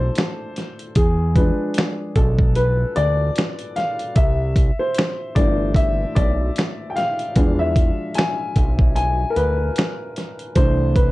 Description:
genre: lo-fi hip hop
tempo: 75 BPM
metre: 4/4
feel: swing 60% on 16ths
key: unclear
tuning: A4 = 440 Hz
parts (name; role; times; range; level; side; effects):
- dark upright piano; accompaniment; 0.0-11.1 s; E3 to G#5; -22 LUFS; left 1 dB; cassette tape, plate reverb
- fat analog bass; bass; 0.0-11.1 s; G1 to E2; -20 LUFS; equal; none
- dusty soul sampler-style drum kit; drums; 0.2-11.1 s; finger snaps, hi-hat, kick drum, snare drum; -18 LUFS; equal; none
room: light reverb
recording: dark, warm production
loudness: -17 LUFS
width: side -19 dB against mid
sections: 0.0-11.1 A section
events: upright piano solo 0.0-11.1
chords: 0.0 C69; 1.0 E7b9; 4.2 C69; 7.4 E7b9; 10.6 C69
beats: 0.16 | 0.96 1.76 2.56 3.36 | 4.16 4.96 5.76 6.56 | 7.36 8.16 8.96 9.76 | 10.56

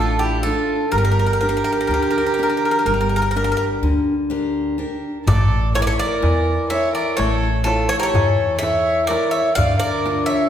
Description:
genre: greek folk, Greek bouzouki band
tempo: 125 BPM (eighths)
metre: 9/8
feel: straight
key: unclear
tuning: A4 = 440 Hz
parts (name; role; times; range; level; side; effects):
- Greek bouzouki; melody; 0.0-10.5 s; G4 to F5; -20 LUFS; equal; none
- warm violin; second line; 0.0-10.5 s; E4 to D5; -25 LUFS; right 3 dB; none
- picked steel-string acoustic guitar; accompaniment; 0.0-10.5 s; D3 to E5; -24 LUFS; left 3 dB; none
- upright bass; bass; 0.0-10.2 s; G1 to E2; -22 LUFS; equal; none
- darbuka; percussion; 5.3-10.3 s; none; -22 LUFS; equal; none
room: wet recital hall reverb, RT60 1.5 s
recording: recorded in a church or concert hall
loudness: -16 LUFS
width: side -9 dB against mid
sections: 0.0-10.5 A section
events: none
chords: 0.0 Dm; 0.9 Gm; 5.3 A; 9.6 Dm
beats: 0.45 | 0.93 1.42 1.90 2.38 2.86 3.35 3.83 4.31 4.79 | 5.27 5.75 6.23 6.71 7.18 7.66 8.14 8.62 9.09 | 9.57 10.05

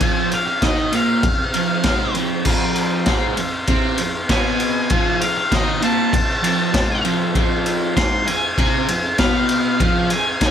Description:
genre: garage rock duo or trio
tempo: 98 BPM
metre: 4/4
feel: straight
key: unclear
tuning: A4 = 441 Hz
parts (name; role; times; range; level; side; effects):
- octave-fuzz lead guitar; melody; 0.0-10.5 s; Eb5 to C6; -22 LUFS; left 1 dB; distortion
- crunchy overdriven guitar; riff; 0.0-10.5 s; F2 to F4; -21 LUFS; right 1 dB; none
- raw garage drum kit; drums; 0.0-10.5 s; crash cymbal, kick drum, ride cymbal, snare drum; -19 LUFS; equal; none
- overdriven combo organ; sustained chords; 2.5-10.5 s; F5 to C6; -29 LUFS; left 3 dB; none
room: light reverb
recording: none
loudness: -16 LUFS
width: side -9 dB against mid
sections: 0.0-10.5 A section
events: lead electric guitar solo 0.0-10.5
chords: 0.0 F5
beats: | 0.01 0.62 1.24 1.85 | 2.46 3.08 3.69 4.30 | 4.91 5.52 6.13 6.75 | 7.36 7.97 8.58 9.19 | 9.80 10.42

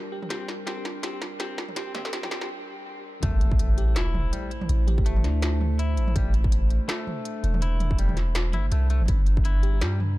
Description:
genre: half-time drum and bass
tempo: 164 BPM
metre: 4/4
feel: swing 57% on 16ths, half-time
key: A phrygian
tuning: A4 = 439 Hz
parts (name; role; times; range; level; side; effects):
- dark analog pad; sustained chords; 0.0-10.2 s; G3 to Bb5; -37 LUFS; right 2 dB; chorus, sidechain pumping
- bell-like FM electric piano; melody; 0.1-5.6, 9.6-9.8 s; D4 to G4; -39 LUFS; left 1 dB; chorus, phaser, digital delay
- industrial drum kit; drums; 0.2-10.1 s; hi-hat, snare drum, toms; -33 LUFS; right 1 dB; small room ambience
- semi-hollow electric guitar; arpeggios; 0.3-10.0 s; G3 to E4; -36 LUFS; left 3 dB; digital delay
- long sustained 808-style bass; bass; 3.2-10.2 s; E1 to G2; -22 LUFS; equal; none
- electronic kick drum; drums; 3.2-9.4 s; none; -25 LUFS; equal; distortion, small room ambience
- impact; sound effects; 3.2-4.7 s; none; -31 LUFS; equal; none
room: digital ambience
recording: dark, warm production, high-pass filter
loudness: -22 LUFS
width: side -18 dB against mid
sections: 0.0-3.2 A section; 3.2-10.2 B section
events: build-up 0.0-3.2; drum fill 0.0-2.5; break 2.5-3.2; drop 3.2-10.2; impact 3.2-4.7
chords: 0.0 Gm; 3.2 Am; 9.1 Gm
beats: | 0.30 0.67 1.03 1.40 | 1.77 2.13 2.50 2.86 | 3.23 3.60 3.96 4.33 | 4.69 5.06 5.42 5.79 | 6.16 6.52 6.89 7.25 | 7.62 7.99 8.35 8.72 | 9.08 9.45 9.81 10.18

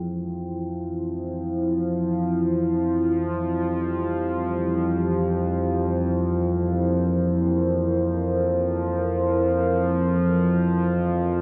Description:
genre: dark ambient drone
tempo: free time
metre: none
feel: none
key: unclear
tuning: A4 = 440 Hz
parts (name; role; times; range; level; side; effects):
- dark analog pad; sustained chords; 0.0-11.4 s; E4 to C5; -27 LUFS; equal; chorus, phaser
- analog drone; drone; 0.0-11.4 s; F2 to F3; -26 LUFS; equal; chorus
- bronze singing bowl; texture; 0.0-11.4 s; G5; -51 LUFS; equal; none
room: wet cathedral reverb, RT60 7.0 s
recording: in a vast, echoing space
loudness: -24 LUFS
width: mono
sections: 0.0-11.4 A section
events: fade-in on synth drone 0.0-11.4; fade-out on analog synth pad 0.0-11.4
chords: 0.0 Fm; 2.7 C; 10.4 F5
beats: free time

